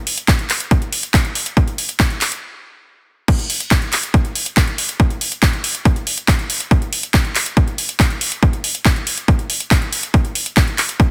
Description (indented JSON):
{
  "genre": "trance",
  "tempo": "140 BPM",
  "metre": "4/4",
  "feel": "straight",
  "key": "none",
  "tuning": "none",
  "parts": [
    { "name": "techno drum kit", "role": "drums", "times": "0.1-11.1 s", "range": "crash cymbal, handclaps, hi-hat", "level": "-22 LUFS", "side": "equal", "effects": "studio reverb" },
    { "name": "electronic kick drum", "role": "drums", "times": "0.3-11.1 s", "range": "none", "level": "-16 LUFS", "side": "equal", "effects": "studio reverb" }
  ],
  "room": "little or no reverb",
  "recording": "dense, heavily limited modern master",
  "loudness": "-17 LUFS",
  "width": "mono",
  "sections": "0.0-3.3 A section; 3.3-11.1 B section",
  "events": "stop 2.4-3.3; drop 3.3-11.1",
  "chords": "none",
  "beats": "0.28 0.71 1.14 | 1.57 2.00 2.43 2.85 | 3.28 3.71 4.14 4.57 | 5.00 5.43 5.85 6.28 | 6.71 7.14 7.57 8.00 | 8.43 8.85 9.28 9.71 | 10.14 10.57 11.00"
}